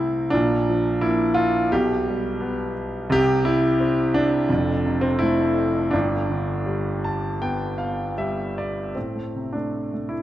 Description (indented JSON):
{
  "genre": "classical, lyrical solo piano",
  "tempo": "74-88 BPM",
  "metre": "4/4",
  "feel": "rubato",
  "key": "unclear",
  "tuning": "A4 = 443 Hz",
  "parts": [
    { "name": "clear concert grand piano", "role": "solo", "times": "0.0-10.2 s", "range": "F1 to A5", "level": "-20 LUFS", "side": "equal", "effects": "none" }
  ],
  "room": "moderate concert hall reverb, RT60 2.4 s",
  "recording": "dark, warm production",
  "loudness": "-20 LUFS",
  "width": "side -13 dB against mid",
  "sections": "0.0-9.0 A section; 9.0-10.2 B section",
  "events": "grand piano fill 6.7-9.0",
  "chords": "0.3 Bb; 1.7 G/B; 3.1 C; 4.5 F; 5.9 G; 9.0 Am",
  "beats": "| 0.32 1.02 1.72 2.42 | 3.11 3.79 4.50 5.22 | 5.94 6.66 7.40 8.17 | 8.96 9.73"
}